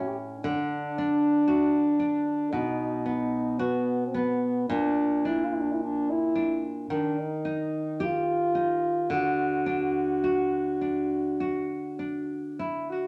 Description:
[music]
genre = celtic folk, Celtic slow air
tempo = 48-58 BPM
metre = 4/4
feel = rubato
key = unclear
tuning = A4 = 440 Hz
[part]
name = mellow French horn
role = melody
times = 0.0-12.6 s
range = B3 to G4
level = -29 LUFS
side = equal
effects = none
[part]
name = nylon-string guitar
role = accompaniment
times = 0.0-13.1 s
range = A2 to G4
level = -31 LUFS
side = equal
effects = none
[sound]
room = wet large studio reverb, RT60 0.9 s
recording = none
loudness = -27 LUFS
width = mono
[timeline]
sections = 0.0-13.1 A section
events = none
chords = 0.4 D; 2.5 B5; 4.7 Bb; 6.9 Ebadd9; 9.1 D

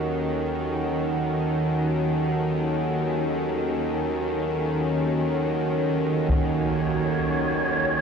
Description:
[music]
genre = dark ambient drone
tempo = free time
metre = none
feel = none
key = unclear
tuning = A4 = 440 Hz
[part]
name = deep dark ambient pad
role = sustained chords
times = 0.0-8.0 s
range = Eb3 to A4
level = -25 LUFS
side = equal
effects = chorus, built-in reverb
[part]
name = bowed-like drone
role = drone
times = 0.0-8.0 s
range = Eb2 to Eb3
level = -27 LUFS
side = equal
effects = built-in reverb
[part]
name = taiko ensemble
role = percussion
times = 6.3-6.5 s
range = none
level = -29 LUFS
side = left 1 dB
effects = low-pass filter on perc
[part]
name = wind-like tuned noise texture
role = texture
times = 6.7-8.0 s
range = C#5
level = -27 LUFS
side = right 2 dB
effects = built-in reverb
[sound]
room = wet cathedral reverb, RT60 5.2 s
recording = in a vast, echoing space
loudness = -22 LUFS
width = side -6 dB against mid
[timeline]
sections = 0.0-8.0 A section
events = none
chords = 0.0 Ebm

